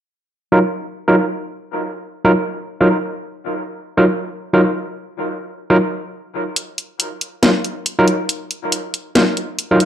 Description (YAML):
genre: deep dubstep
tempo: 139 BPM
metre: 4/4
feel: swing 60% on 16ths, half-time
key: Eb minor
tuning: A4 = 440 Hz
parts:
  - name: overdriven tine electric piano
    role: stabs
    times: 0.5-9.8 s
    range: Gb3 to Bb4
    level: -16 LUFS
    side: equal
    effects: low-pass filter, dub echo
  - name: garage drum kit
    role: drums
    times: 6.6-9.9 s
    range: hi-hat, snare drum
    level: -17 LUFS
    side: left 1 dB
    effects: small room reverb
room: moderate digital room reverb, RT60 1.0 s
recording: dark, warm production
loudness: -16 LUFS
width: side -10 dB against mid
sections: 0.0-9.9 A section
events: none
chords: 0.0 Ebmadd9